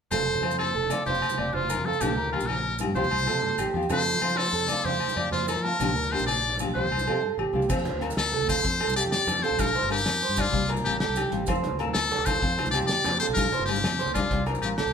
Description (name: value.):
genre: highlife guitar band.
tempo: 127 BPM (dotted quarters).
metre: 12/8.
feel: straight.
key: F major.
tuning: A4 = 440 Hz.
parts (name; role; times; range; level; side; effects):
trumpet with metal mute; melody; 0.1-14.9 s; F4 to D5; -27 LUFS; left 3 dB; none.
nylon-string guitar; accompaniment; 0.1-14.7 s; F3 to A4; -33 LUFS; left 4 dB; none.
electric guitar at the edge of break-up; arpeggios; 0.1-14.9 s; G4 to A5; -30 LUFS; right 5 dB; none.
fingered electric bass; bass; 0.1-14.9 s; F1 to F3; -32 LUFS; equal; none.
agogo bells; percussion; 0.1-14.8 s; none; -35 LUFS; left 8 dB; none.
congas; percussion; 0.1-14.9 s; none; -34 LUFS; right 4 dB; none.
maracas; percussion; 0.1-14.9 s; none; -42 LUFS; right 6 dB; none.
damped 70s drum kit; drums; 7.7-14.9 s; crash cymbal, hi-hat, kick drum, snare drum; -32 LUFS; equal; none.
room: moderate large studio reverb, RT60 1.2 s.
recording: band playing live in one room.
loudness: -23 LUFS.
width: side -7 dB against mid.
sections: 0.1-7.7 A section; 7.7-14.9 B section.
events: drum fill 7.1-7.7, 14.6-14.9.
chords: 0.1 F; 1.1 Dm7/F; 2.0 Bb6; 3.0 Csus4; 3.9 F; 4.9 Dm7/F; 5.8 Bb6; 6.8 Csus4; 7.7 F; 8.6 Dm7; 9.6 Bb6; 10.5 Csus4; 11.5 F; 12.4 Dm7; 13.4 Bb6; 14.3 Csus4.